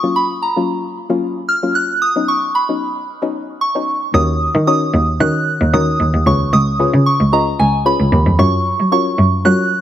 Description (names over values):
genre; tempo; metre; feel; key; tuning
dance-pop; 113 BPM; 4/4; straight; Eb minor; A4 = 440 Hz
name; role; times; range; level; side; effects
soft round pluck; accompaniment; 0.0-9.8 s; Gb3 to Eb5; -20 LUFS; left 4 dB; chorus
soft synth bell; melody; 0.2-9.8 s; Ab5 to Gb6; -17 LUFS; right 2 dB; chorus, dub echo
warm cello; bass; 4.1-9.6 s; Db2 to Gb3; -14 LUFS; equal; none
room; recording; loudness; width
light reverb, small room ambience; high-pass filter; -13 LUFS; side -11 dB against mid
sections
0.0-4.1 A section; 4.1-9.8 B section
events
build-up 0.0-4.1; drop 4.1-9.8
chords
0.0 Gbmaj7; 2.0 Badd9; 4.1 Ebm7; 6.3 Db7; 8.4 Gbmaj7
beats
0.42 0.96 1.49 | 2.02 2.55 3.08 3.61 | 4.14 4.67 5.20 5.73 | 6.26 6.80 7.33 7.86 | 8.39 8.92 9.45